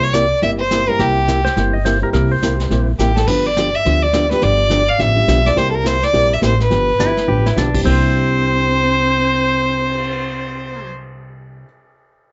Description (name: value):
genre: country, western swing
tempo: 210 BPM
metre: 4/4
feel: swing 61% on 8ths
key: C mixolydian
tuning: A4 = 440 Hz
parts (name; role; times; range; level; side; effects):
- clear fiddle; melody; 0.0-10.9 s; G4 to F5; -19 LUFS; equal; none
- dark upright piano; accompaniment; 0.0-11.7 s; C3 to Bb4; -28 LUFS; equal; none
- hollow-body jazz guitar; accompaniment; 0.0-11.7 s; C3 to G4; -25 LUFS; equal; none
- upright bass; bass; 0.0-11.6 s; G1 to D2; -21 LUFS; equal; none
- vintage brush drum kit; drums; 0.1-10.1 s; brushed snare drum, crash cymbal, cymbal swell, hi-hat, kick drum, snare drum; -29 LUFS; equal; none
- clean lap steel guitar; second line; 1.4-2.9, 7.0-10.9 s; C4 to Eb5; -24 LUFS; equal; none
room: light reverb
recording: nothing above 7.9 kHz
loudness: -16 LUFS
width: mono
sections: 0.0-7.9 A section; 7.9-10.1 B section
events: drum fill 3.0, 7.3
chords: 0.0 C7; 3.3 G7; 5.6 C7; 6.7 G7; 7.9 C7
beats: 0.14 0.42 0.71 | 0.99 1.28 1.57 1.85 | 2.14 2.42 2.71 3.00 | 3.28 3.57 3.85 4.14 | 4.43 4.71 5.00 5.29 | 5.57 5.86 6.14 6.43 | 6.71 7.00 7.29 7.57 | 7.86 8.14 8.43 8.72 | 9.00 9.29 9.57 9.86